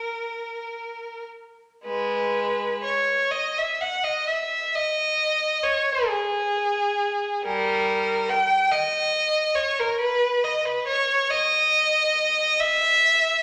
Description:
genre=classical, free, expressive piece for unaccompanied violin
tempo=27-48 BPM (dotted quarters)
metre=6/8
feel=rubato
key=unclear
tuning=A4 = 436 Hz
part: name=rich violin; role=solo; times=0.0-13.4 s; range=G3 to G5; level=-23 LUFS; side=equal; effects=none
room=wet recital hall reverb, RT60 1.4 s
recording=none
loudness=-23 LUFS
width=mono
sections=0.0-1.9 A section; 1.9-13.4 B section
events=none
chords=none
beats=0.00 | 1.86 3.32 | 4.74 6.08 | 7.43 8.71 | 10.01 11.31 | 12.60

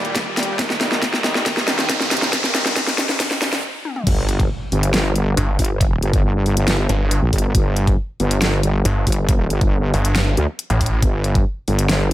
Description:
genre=heavy wobble dubstep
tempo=138 BPM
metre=4/4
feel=half-time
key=unclear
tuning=A4 = 440 Hz
part: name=supersaw chords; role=sustained chords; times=0.0-3.6 s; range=C2 to G3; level=-25 LUFS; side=equal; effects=sidechain pumping
part: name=dubstep drum kit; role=drums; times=0.0-12.1 s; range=crash cymbal, hi-hat, snare drum, toms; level=-21 LUFS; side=equal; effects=overdrive, small room ambience
part: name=riser and impact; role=sound effects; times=0.0-5.8 s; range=none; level=-25 LUFS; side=equal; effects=none
part: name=electronic kick drum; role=drums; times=0.2-11.4 s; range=none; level=-19 LUFS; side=equal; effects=overdrive, small room ambience
part: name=wobble bass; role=bass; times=4.1-12.1 s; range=G1 to D2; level=-18 LUFS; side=equal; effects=chorus, overdrive
part: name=snarling distorted saw bass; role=bass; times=5.4-11.0 s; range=G1 to A1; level=-17 LUFS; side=equal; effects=distortion, overdrive
room=light reverb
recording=high-pass filter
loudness=-16 LUFS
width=side -14 dB against mid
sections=0.0-4.1 A section; 4.1-12.1 B section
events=build-up 0.0-4.1; drum fill 0.0-3.6, 3.9; riser 0.0-3.6; stop 3.6-4.1; drop 4.1-12.1; impact 4.1-5.8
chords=0.0 Eb; 0.6 Cm; 4.1 N.C.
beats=0.16 | 0.59 1.02 1.46 1.90 | 2.33 2.76 3.20 3.63 | 4.07 4.50 4.94 5.37 | 5.81 6.24 6.68 7.11 | 7.55 7.98 8.42 8.85 | 9.29 9.72 10.16 10.59 | 11.03 11.46 11.89

